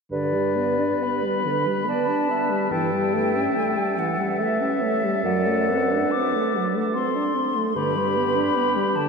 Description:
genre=classical, slow romantic movement for wind quintet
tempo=71 BPM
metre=3/4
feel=uneven beats, rubato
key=G major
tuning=A4 = 440 Hz
part: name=concert flute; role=melody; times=0.1-9.1 s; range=D5 to D6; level=-26 LUFS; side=left 5 dB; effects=none
part: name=warm oboe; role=second line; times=0.1-9.1 s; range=G4 to B4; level=-29 LUFS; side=left 2 dB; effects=none
part: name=mellow French horn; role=accompaniment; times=0.1-9.1 s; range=D3 to D4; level=-24 LUFS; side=right 1 dB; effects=none
part: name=dark bassoon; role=bass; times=0.1-8.4 s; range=F#2 to G2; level=-28 LUFS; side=right 1 dB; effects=none
part: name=warm clarinet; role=accompaniment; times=1.0-9.1 s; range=A4 to E5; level=-30 LUFS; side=right 6 dB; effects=none
room=wet cathedral reverb, RT60 5.1 s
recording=dark, warm production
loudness=-20 LUFS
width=side -5 dB against mid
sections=0.1-9.1 A section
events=none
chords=0.1 G; 2.7 A7/G; 5.2 D7/F#; 7.8 G

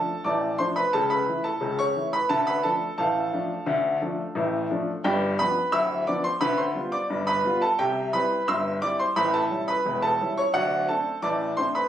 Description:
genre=ragtime piano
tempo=87 BPM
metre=2/4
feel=straight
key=unclear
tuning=A4 = 440 Hz
part: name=warm upright piano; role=solo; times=0.0-11.9 s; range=D1 to E6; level=-22 LUFS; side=equal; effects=none
room=moderate small room reverb, RT60 0.5 s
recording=recorded on a phone in the room, club reverb, compression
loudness=-22 LUFS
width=side -10 dB against mid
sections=0.0-11.9 A section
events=none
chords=0.0 Dm; 0.9 A/C#; 2.3 Dm; 5.0 G7; 6.4 G7/D; 7.8 C; 9.2 A7; 10.5 D7

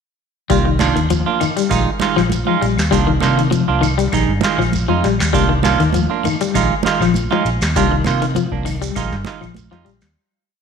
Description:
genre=afrobeat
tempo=99 BPM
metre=4/4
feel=straight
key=C minor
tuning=A4 = 440 Hz
part: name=electric guitar at the edge of break-up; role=arpeggios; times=0.5-10.0 s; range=Eb3 to G3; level=-20 LUFS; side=left 11 dB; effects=tremolo, slapback echo
part: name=semi-hollow electric guitar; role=stabs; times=0.5-9.9 s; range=Eb3 to F4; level=-19 LUFS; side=right 9 dB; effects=none
part: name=fingered electric bass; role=bass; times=0.5-10.1 s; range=Bb1 to C3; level=-19 LUFS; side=equal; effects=none
part: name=booming analog drum machine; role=drums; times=0.5-10.2 s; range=hi-hat, kick drum, snare drum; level=-24 LUFS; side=equal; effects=none
part: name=congas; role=percussion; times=0.5-9.7 s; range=none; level=-25 LUFS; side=right 11 dB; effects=none
part: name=shekere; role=percussion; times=0.5-10.2 s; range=none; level=-30 LUFS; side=right 7 dB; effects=none
part: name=claves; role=percussion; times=0.8-10.2 s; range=none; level=-32 LUFS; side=left 12 dB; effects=none
room=moderate echo chamber reverb, RT60 1.4 s, digital ambience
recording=1960s-style stereo with parts hard left and right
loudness=-14 LUFS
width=side -6 dB against mid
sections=0.5-10.2 groove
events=fade-out 7.8-10.2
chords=0.5 Cm11; 1.7 Bb7sus4; 2.9 Cm11; 4.1 Bb7sus4; 5.3 Cm11; 6.5 Bb7sus4; 7.8 Cm11; 9.0 Bb7sus4

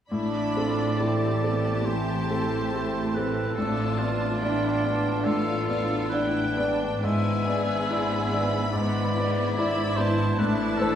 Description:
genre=classical, romantic movement for piano and orchestra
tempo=70 BPM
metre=4/4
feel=uneven beats, rubato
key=unclear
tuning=A4 = 440 Hz
part: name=clear baby grand piano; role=melody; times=0.1-11.0 s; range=G#2 to D5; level=-27 LUFS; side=left 1 dB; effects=none
part: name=clear chamber violin section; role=melody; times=0.1-11.0 s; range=F5 to B5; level=-37 LUFS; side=left 3 dB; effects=none
part: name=rich chamber violin section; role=second line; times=0.1-11.0 s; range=D4 to G#4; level=-34 LUFS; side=left 3 dB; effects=none
part: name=warm oboe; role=second line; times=0.1-11.0 s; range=F4 to E5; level=-31 LUFS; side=right 1 dB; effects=none
part: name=rich chamber viola section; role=accompaniment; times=0.1-11.0 s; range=A3 to F4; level=-32 LUFS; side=right 2 dB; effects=none
part: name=mellow French horn section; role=sustained chords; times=0.1-11.0 s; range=B3 to E4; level=-34 LUFS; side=left 1 dB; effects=none
part: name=clear chamber cello section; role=bass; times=0.1-11.0 s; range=G#2 to A2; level=-33 LUFS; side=right 1 dB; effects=none
part: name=rich chamber double bass section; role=bass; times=0.1-11.0 s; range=G#1 to A1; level=-33 LUFS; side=right 3 dB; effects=none
room=wet recital hall reverb, RT60 1.6 s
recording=heard from further back in the room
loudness=-23 LUFS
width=side -9 dB against mid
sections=0.1-11.0 A section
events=none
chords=0.1 Bm7b5/A; 7.0 E7/G#; 10.4 Am

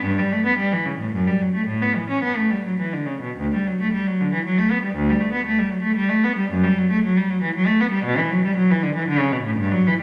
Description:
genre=classical, baroque-style suite movement for unaccompanied cello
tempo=103-120 BPM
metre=3/4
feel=rubato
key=D major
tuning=A4 = 440 Hz
part: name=rich cello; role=solo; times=0.0-10.0 s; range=D2 to C#4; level=-21 LUFS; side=equal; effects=none
room=wet recital hall reverb, RT60 1.7 s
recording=none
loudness=-21 LUFS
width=mono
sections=0.0-3.4 A section; 3.4-10.0 A section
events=none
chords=none

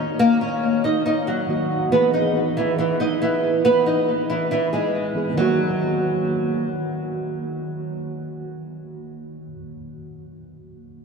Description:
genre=hip hop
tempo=139 BPM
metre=4/4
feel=half-time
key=Eb phrygian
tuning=A4 = 440 Hz
part: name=flamenco guitar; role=melody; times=0.0-6.6 s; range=E3 to Eb5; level=-20 LUFS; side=equal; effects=lush chorus, ping-pong delay
part: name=mellow tine electric piano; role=accompaniment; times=0.0-11.0 s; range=Eb3 to G#4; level=-26 LUFS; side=right 2 dB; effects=ensemble chorus
room=wet cathedral reverb, RT60 6.4 s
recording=dreamy mix soaked in reverb, faint mains hum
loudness=-19 LUFS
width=side -5 dB against mid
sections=0.0-5.4 A section; 5.4-8.8 B section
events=none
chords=0.0 Ebm; 1.9 E; 5.4 Ebm

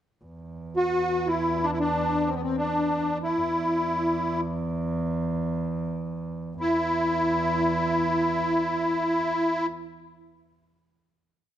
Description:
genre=Arabic maqam ensemble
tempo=free time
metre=none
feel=none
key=unclear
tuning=A4 = 444 Hz
part: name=rich double bass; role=drone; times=0.2-9.7 s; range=E2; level=-31 LUFS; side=right 2 dB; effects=none
part: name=musette accordion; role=melody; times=0.8-9.7 s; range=B3 to F#4-50c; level=-24 LUFS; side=left 1 dB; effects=none
room=moderate recital hall reverb, RT60 1.6 s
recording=dark, warm production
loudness=-24 LUFS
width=side -11 dB against mid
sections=0.2-6.6 free-time section; 6.6-9.8 final note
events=none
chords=none

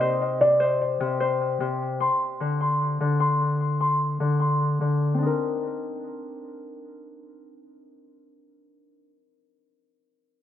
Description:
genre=hip hop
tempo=150 BPM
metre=4/4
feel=half-time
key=C minor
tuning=A4 = 440 Hz
part: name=felt-muted upright piano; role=melody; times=0.0-0.8 s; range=D5 to Eb5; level=-22 LUFS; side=equal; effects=low-pass filter, ping-pong delay
part: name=Celtic harp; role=arpeggios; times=0.0-9.2 s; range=C3 to C6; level=-23 LUFS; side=left 2 dB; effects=low-pass filter, ping-pong delay
room=light reverb, digital ambience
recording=worn, warbling old tape, cassette tape, warbly pitch drift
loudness=-22 LUFS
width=side -10 dB against mid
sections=0.0-5.2 A section; 5.2-8.4 B section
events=filter sweep 0.0-5.2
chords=0.0 Cm7; 2.0 Csus2/D; 5.2 Cm9

